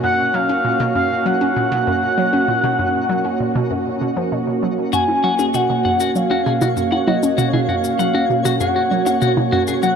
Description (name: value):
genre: ambient, sequencer-driven space music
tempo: 98 BPM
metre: 4/4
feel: straight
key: F# major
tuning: A4 = 439 Hz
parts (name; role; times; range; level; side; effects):
- expressive synth lead; melody; 0.0-10.0 s; D#5 to G#5; -20 LUFS; left 1 dB; chorus, cassette tape, tape echo
- sweeping resonant pad; sustained chords; 0.0-10.0 s; A#3 to F#4; -21 LUFS; right 2 dB; chorus
- hollow square pluck; riff; 0.0-9.9 s; F#2 to C#4; -22 LUFS; right 1 dB; chorus, tape echo
- twinkling granular texture; texture; 0.0-10.0 s; C#4 to C#5; -30 LUFS; left 1 dB; built-in reverb
- twelve-string electric guitar; arpeggios; 4.9-9.9 s; F#4 to F#5; -23 LUFS; left 3 dB; auto-pan, tape echo
- shaker and bongos; percussion; 4.9-10.0 s; none; -27 LUFS; left 1 dB; tape echo
room: wet plate reverb, RT60 2.9 s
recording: none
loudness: -15 LUFS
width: side -7 dB against mid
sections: 0.0-10.0 A section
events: none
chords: 0.0 F#